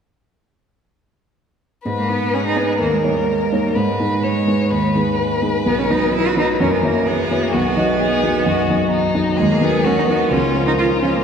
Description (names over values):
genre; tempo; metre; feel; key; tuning
quick classical-period movement for piano trio; 128 BPM; 4/4; rubato; G# minor; A4 = 438 Hz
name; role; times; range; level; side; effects
rich violin; melody; 1.8-11.2 s; D#4 to C#5; -22 LUFS; left 3 dB; none
rich cello; second line; 1.9-11.2 s; G3 to F#4; -20 LUFS; right 3 dB; none
warm grand piano; accompaniment; 1.9-11.2 s; B1 to D#5; -18 LUFS; equal; none
room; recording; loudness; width
wet church reverb, RT60 3.0 s; minimal, uncompressed stereo recording; -15 LUFS; side -7 dB against mid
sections
1.8-11.2 A section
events
none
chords
1.8 G#m; 2.8 D#5; 3.8 G#m; 5.7 B; 6.6 F#7; 7.5 B; 9.4 Ebm; 10.3 Bbm/Db